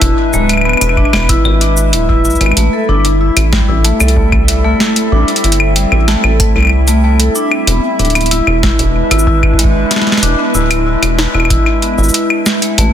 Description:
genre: IDM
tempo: 94 BPM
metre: 4/4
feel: straight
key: unclear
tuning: A4 = 440 Hz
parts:
  - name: warbly tape-like pad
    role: sustained chords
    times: 0.0-12.9 s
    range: G3 to E5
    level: -17 LUFS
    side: equal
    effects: chorus, built-in reverb
  - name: vibraphone with medium hard mallets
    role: arpeggios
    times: 0.0-12.9 s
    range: G3 to A4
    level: -17 LUFS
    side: left 2 dB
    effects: ping-pong delay
  - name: deep acid bass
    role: bass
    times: 0.0-12.9 s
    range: D1 to C2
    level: -13 LUFS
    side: equal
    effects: tube saturation
  - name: booming analog drum machine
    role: drums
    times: 0.0-12.9 s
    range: claves, hi-hat, shaker, snare drum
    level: -15 LUFS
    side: left 1 dB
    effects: overdrive, ping-pong delay
  - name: electronic kick drum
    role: drums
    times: 0.0-11.6 s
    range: none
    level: -14 LUFS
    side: equal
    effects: overdrive
room: light reverb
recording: dense, heavily limited modern master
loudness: -9 LUFS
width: side -10 dB against mid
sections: 0.0-12.9 A section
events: none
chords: 0.0 E7; 2.6 Am7; 7.7 E7

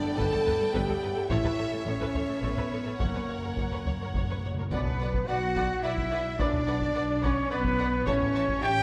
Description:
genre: cinematic, epic orchestral film score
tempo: 107 BPM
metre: 3/4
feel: straight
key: B minor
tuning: A4 = 442 Hz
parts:
  - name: warm symphonic violin section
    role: melody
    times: 0.0-8.8 s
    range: A#4 to A5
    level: -43 LUFS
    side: equal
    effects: none
  - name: rich symphonic violin section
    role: second line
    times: 0.0-8.7 s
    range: C#5 to A5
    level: -44 LUFS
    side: equal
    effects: none
  - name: warm symphonic viola section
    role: accompaniment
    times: 0.0-8.7 s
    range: A4 to D5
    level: -40 LUFS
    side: equal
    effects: none
  - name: dark French horn section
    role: sustained chords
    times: 0.0-8.8 s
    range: A#3 to A4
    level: -34 LUFS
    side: equal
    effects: none
  - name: warm trombone section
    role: sustained chords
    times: 0.0-8.3 s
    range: F#2 to D4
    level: -43 LUFS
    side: equal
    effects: none
  - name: rich studio cello section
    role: bass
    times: 0.0-8.8 s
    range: F#2 to G4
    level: -38 LUFS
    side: equal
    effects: none
  - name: warm symphonic double bass section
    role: bass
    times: 0.2-8.8 s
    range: F#1 to B1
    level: -36 LUFS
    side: equal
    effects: none
  - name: taiko ensemble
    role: drums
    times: 0.2-8.8 s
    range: none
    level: -37 LUFS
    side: equal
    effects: none
  - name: timpani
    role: percussion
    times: 3.0-4.7 s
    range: F#2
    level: -39 LUFS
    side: equal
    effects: none
  - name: mellow hollow silver concert flute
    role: second line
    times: 4.7-8.8 s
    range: B4 to G5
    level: -38 LUFS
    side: equal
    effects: none
  - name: warm trumpet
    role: stabs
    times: 4.7-8.8 s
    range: B4 to G5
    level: -34 LUFS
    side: equal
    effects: none
room: wet scoring stage reverb, RT60 1.8 s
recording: none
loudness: -28 LUFS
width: mono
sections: 0.0-4.7 A section; 4.7-8.8 B section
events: timpani fill 3.0-4.7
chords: 0.0 Gadd9; 1.3 A; 3.0 F#; 4.7 Bm; 8.1 A

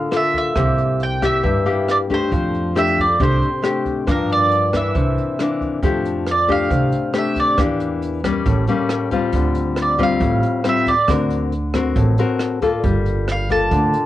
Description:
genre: bossa nova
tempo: 137 BPM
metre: 4/4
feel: straight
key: F major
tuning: A4 = 440 Hz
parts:
  - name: mandolin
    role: melody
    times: 0.0-14.1 s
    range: Bb4 to A5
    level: -20 LUFS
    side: right 2 dB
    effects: none
  - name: nylon-string guitar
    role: accompaniment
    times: 0.0-14.1 s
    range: G2 to Bb4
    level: -20 LUFS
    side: left 4 dB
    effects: none
  - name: jazz brush drum kit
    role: drums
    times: 0.1-14.0 s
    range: hi-hat, kick drum, rim click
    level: -26 LUFS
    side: right 2 dB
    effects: none
  - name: upright bass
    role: bass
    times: 0.6-13.9 s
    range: G1 to G2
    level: -22 LUFS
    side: right 2 dB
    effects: none
room: moderate booth ambience, RT60 0.2 s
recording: home recording on cassette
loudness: -16 LUFS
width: side -14 dB against mid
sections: 0.0-5.8 A section; 5.8-14.1 B section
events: mandolin solo 5.8-14.1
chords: 0.0 Gm9 (rootless); 0.6 C7; 2.3 F69; 4.1 Gm7; 5.0 C9; 5.8 F69; 7.6 Em7b5; 8.5 A7b9; 9.3 Dm7; 11.1 D7b13; 12.8 Gm9

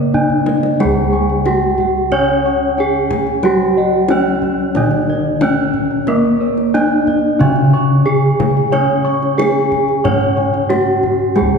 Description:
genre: Javanese gamelan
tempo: 91 BPM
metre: 4/4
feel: straight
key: C# pelog barang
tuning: A4 = 441 Hz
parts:
  - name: gamelan-type bronze metallophone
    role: melody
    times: 0.0-11.6 s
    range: A#3+20c to C#5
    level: -16 LUFS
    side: equal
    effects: none
  - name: gamelan-type bronze metallophone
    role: accompaniment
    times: 0.0-11.6 s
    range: C#3 to C#4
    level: -20 LUFS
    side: right 1 dB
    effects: none
  - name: gamelan-type bossed gongs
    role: arpeggios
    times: 0.0-11.6 s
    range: A#4+20c to C#6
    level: -22 LUFS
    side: left 1 dB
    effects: none
  - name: gamelan-type bronze metallophone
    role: arpeggios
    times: 0.0-11.6 s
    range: A#4+20c to C#6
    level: -22 LUFS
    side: right 2 dB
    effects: none
  - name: gamelan-type bossed gongs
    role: bass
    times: 0.0-11.6 s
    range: C#2 to C#5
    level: -20 LUFS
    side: equal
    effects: none
  - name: kendang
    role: percussion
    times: 0.1-11.5 s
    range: none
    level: -23 LUFS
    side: left 1 dB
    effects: none
room: wet church reverb, RT60 2.7 s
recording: recorded in a church or concert hall, nothing above 10.9 kHz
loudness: -12 LUFS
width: side -5 dB against mid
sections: 0.8-11.6 A section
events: drum fill 0.1-0.8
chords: none

